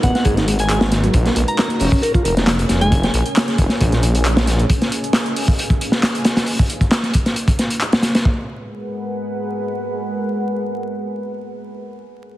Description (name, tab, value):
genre	breakbeat, breaks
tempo	135 BPM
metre	4/4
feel	straight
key	G# dorian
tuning	A4 = 440 Hz
part	soft synth bell	melody	0.0-2.9 s	F#5 to A#5	-25 LUFS	equal	chorus, phaser, AM radio sound, digital delay
part	deep dark ambient pad	sustained chords	0.0-11.5 s	G#3 to F#5	-26 LUFS	equal	chorus, built-in reverb, vintage 12-bit sampler grit, sidechain pumping
part	mellow tonewheel organ	riff	0.0-2.9 s	F#3 to A#4	-22 LUFS	equal	slow rotary speaker, overdrive, digital delay
part	detuned saw bass	bass	0.0-4.6 s	D#1 to A#1	-18 LUFS	equal	none
part	crunchy breakbeat drum kit	drums	0.0-8.4 s	hi-hat, kick drum, snare drum	-17 LUFS	equal	none
part	punchy analog drum machine	drums	0.0-8.2 s	handclaps, hi-hat	-26 LUFS	equal	none
room	light reverb, small room reverb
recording	heavily compressed radio sound, multiband compression, vinyl crackle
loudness	-15 LUFS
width	side -15 dB against mid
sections	0.0-8.3 A section; 8.3-11.8 B section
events	drop 0.0-8.3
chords	0.0 G#m7; 1.1 A#m7; 4.7 C#7; 8.3 G#m7